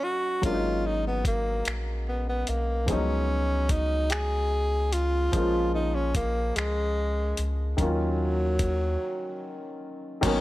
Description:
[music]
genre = slow six-eight R&B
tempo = 49 BPM (dotted quarters)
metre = 6/8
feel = straight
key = unclear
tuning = A4 = 440 Hz
[part]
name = breathy tenor saxophone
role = melody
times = 0.0-9.8 s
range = F#3 to G#4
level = -29 LUFS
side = equal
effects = none
[part]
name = warm baby grand piano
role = accompaniment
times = 0.0-10.4 s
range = D#3 to E#5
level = -31 LUFS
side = left 1 dB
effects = none
[part]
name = round analog bass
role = bass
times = 0.4-10.4 s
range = G#1 to D#2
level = -28 LUFS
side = equal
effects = none
[part]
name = dusty soul sampler-style drum kit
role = drums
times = 0.4-10.4 s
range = crash cymbal, finger snaps, hi-hat, kick drum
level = -28 LUFS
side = equal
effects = none
[sound]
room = light reverb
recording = none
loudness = -24 LUFS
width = side -16 dB against mid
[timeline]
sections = 0.0-10.2 A section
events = break 9.0-10.2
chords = 0.4 G#m11; 2.9 C#7sus4; 5.3 A#m7; 7.8 D#m7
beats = | 0.43 1.66 | 2.88 4.11 | 5.33 6.56 | 7.78 9.01 | 10.23

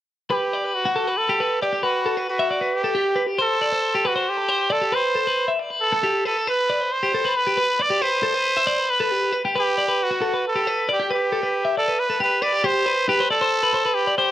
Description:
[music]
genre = rock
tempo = 272 BPM (eighths)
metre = 7/8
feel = straight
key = G major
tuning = A4 = 443 Hz
[part]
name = growling trumpet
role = melody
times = 0.3-14.3 s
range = F#4 to D5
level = -22 LUFS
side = right 2 dB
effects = none
[part]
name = twelve-string electric guitar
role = arpeggios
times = 0.3-14.3 s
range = F#4 to E5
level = -22 LUFS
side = left 2 dB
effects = spring reverb
[sound]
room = light reverb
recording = none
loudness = -19 LUFS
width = side -12 dB against mid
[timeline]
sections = 0.3-12.7 A section; 12.7-14.3 B section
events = none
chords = 0.3 Gmaj7; 3.4 D7sus4 (rootless); 9.6 G; 12.7 C5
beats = | 0.31 0.53 0.75 0.97 1.19 1.41 1.63 | 1.85 2.07 2.29 2.51 2.73 2.95 3.17 | 3.39 3.61 3.83 4.05 4.27 4.49 4.71 | 4.93 5.15 5.37 5.59 5.81 6.03 6.25 | 6.47 6.70 6.92 7.14 7.36 7.58 7.80 | 8.02 8.24 8.46 8.68 8.90 9.12 9.34 | 9.56 9.78 10.01 10.22 10.45 10.67 10.89 | 11.11 11.33 11.55 11.77 11.99 12.21 12.43 | 12.65 12.87 13.09 13.31 13.53 13.75 13.97 | 14.19

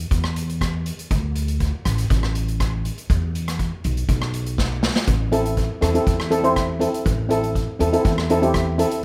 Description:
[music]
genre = calypso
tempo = 121 BPM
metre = 4/4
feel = straight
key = A minor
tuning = A4 = 439 Hz
[part]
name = upright bass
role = bass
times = 0.0-8.8 s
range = A1 to E2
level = -26 LUFS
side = equal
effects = none
[part]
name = street-band drum kit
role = drums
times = 0.1-9.0 s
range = hi-hat, kick drum, rim click, snare drum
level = -27 LUFS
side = equal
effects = none
[part]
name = steel pan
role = accompaniment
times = 5.3-9.0 s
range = C4 to C5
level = -22 LUFS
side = equal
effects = none
[sound]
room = light reverb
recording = none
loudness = -21 LUFS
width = mono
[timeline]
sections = 0.0-9.0 A section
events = drum fill 4.6-5.1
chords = 0.0 N.C.; 1.1 D5; 3.1 E5; 5.1 Am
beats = 0.11 0.61 | 1.11 1.61 2.10 2.60 | 3.10 3.59 4.09 4.59 | 5.08 5.58 6.07 6.57 | 7.06 7.56 8.05 8.55

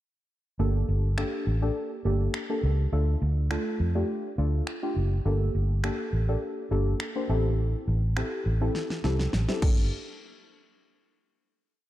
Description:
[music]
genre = dance-pop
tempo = 103 BPM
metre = 4/4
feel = straight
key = G dorian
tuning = A4 = 437 Hz
[part]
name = deep mellow chord stab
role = accompaniment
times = 0.6-9.9 s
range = A3 to C5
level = -31 LUFS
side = left 1 dB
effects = chorus, sidechain pumping
[part]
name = vintage muted fingered electric bass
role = bass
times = 0.6-9.9 s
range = F#1 to F2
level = -25 LUFS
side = equal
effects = sidechain pumping
[part]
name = pop drum kit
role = drums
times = 1.2-9.8 s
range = crash cymbal, finger snaps, kick drum, snare drum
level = -32 LUFS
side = equal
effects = none
[sound]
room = light reverb, digital ambience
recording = dark, warm production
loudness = -25 LUFS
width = side -14 dB against mid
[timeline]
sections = 0.6-9.9 verse; 9.9-11.9 final hit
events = drum fill 8.8-9.9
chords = 0.6 Gmadd9; 2.9 Dm; 5.3 Gmadd9; 7.3 Am7; 9.6 Gmadd9; 9.9 N.C.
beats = | 0.59 1.18 1.76 2.34 | 2.92 3.51 4.09 4.67 | 5.25 5.84 6.42 7.00 | 7.58 8.17 8.75 9.33

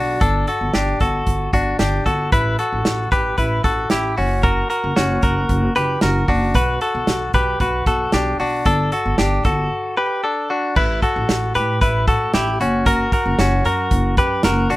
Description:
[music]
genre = jangly indie pop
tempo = 114 BPM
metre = 4/4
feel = straight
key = unclear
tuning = A4 = 439 Hz
[part]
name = direct-recorded clean electric guitar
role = arpeggios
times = 0.0-14.8 s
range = C#4 to B4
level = -19 LUFS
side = left 1 dB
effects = slapback echo
[part]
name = upright bass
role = bass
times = 0.0-14.8 s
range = F#1 to A2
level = -21 LUFS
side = equal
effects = none
[part]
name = loose indie drum kit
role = drums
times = 0.2-14.8 s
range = crash cymbal, hi-hat, kick drum, snare drum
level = -21 LUFS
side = right 1 dB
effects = none
[sound]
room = small room reverb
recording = rough home demo mix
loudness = -16 LUFS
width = side -17 dB against mid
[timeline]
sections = 0.0-10.8 A section; 10.8-14.8 B section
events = break 9.7-10.8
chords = 0.2 Gsus2; 2.3 Asus2; 4.2 F#; 6.5 Bm7; 8.7 Gsus2; 10.8 Asus2; 12.6 F#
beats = | 0.21 0.74 1.26 1.79 | 2.32 2.85 3.38 3.91 | 4.43 4.96 5.49 6.02 | 6.55 7.08 7.60 8.13 | 8.66 9.18 9.71 10.24 | 10.76 11.29 11.81 12.34 | 12.87 13.39 13.91 14.44

